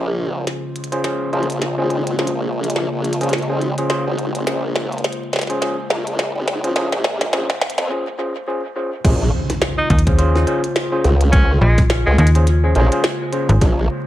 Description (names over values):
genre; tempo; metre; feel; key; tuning
glitch hop; 105 BPM; 4/4; swing 58% on 16ths; Bb minor; A4 = 440 Hz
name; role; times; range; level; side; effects
warbly tape-like pad; sustained chords; 0.0-14.1 s; Db3 to G4; -26 LUFS; left 1 dB; chorus, built-in reverb, vintage 12-bit sampler grit, sidechain pumping
overdriven tine electric piano; stabs; 0.0-13.8 s; Db4 to C5; -23 LUFS; equal; sidechain pumping, low-pass filter, dub echo
formant-sweep wobble bass; bass; 0.0-13.9 s; Ab1 to F2; -19 LUFS; equal; chorus, tube saturation, high-pass filter
glitchy drum kit; drums; 0.5-13.7 s; crash cymbal, hi-hat, snare drum; -24 LUFS; equal; studio reverb, dub echo
electronic kick drum; drums; 9.0-13.7 s; none; -15 LUFS; equal; overdrive, studio reverb
impact; sound effects; 9.0-11.3 s; none; -26 LUFS; equal; none
bright tenor saxophone; melody; 9.8-12.3 s; Ab3 to Eb4; -24 LUFS; equal; dub echo
slap-like FM bass; bass; 9.9-13.6 s; Ab1 to Eb2; -13 LUFS; equal; none
room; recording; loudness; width
light reverb, digital ambience; echo-heavy mix, vinyl crackle, high-pass filter; -16 LUFS; side -14 dB against mid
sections
0.0-9.0 A section; 9.0-14.1 B section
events
build-up 0.0-9.0; drum fill 0.0-7.9; break 7.9-9.0; drop 9.0-14.1; impact 9.0-11.3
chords
0.0 Bbm7